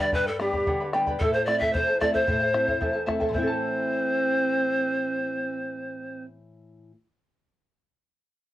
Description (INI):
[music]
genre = andean folk, Andean ensemble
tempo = 112 BPM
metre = 2/4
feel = straight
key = A minor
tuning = A4 = 442 Hz
[part]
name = breathy bright large pan pipes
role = melody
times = 0.0-6.2 s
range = G4 to E5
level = -25 LUFS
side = left 1 dB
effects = none
[part]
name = breathy bright pan flute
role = second line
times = 0.0-6.2 s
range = C4 to E5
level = -30 LUFS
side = right 3 dB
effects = cassette tape
[part]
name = charango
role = accompaniment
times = 0.0-7.0 s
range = E4 to B5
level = -29 LUFS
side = equal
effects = cassette tape
[part]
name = nylon-string guitar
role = accompaniment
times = 0.0-7.0 s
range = E2 to E4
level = -34 LUFS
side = left 2 dB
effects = cassette tape
[part]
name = bombo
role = percussion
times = 0.1-3.6 s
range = none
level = -32 LUFS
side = left 1 dB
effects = none
[sound]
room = moderate studio ambience, RT60 0.5 s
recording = home recording on cassette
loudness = -23 LUFS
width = side -14 dB against mid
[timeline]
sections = 0.0-3.3 A section; 3.3-5.5 B section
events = none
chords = 0.0 G; 1.2 Am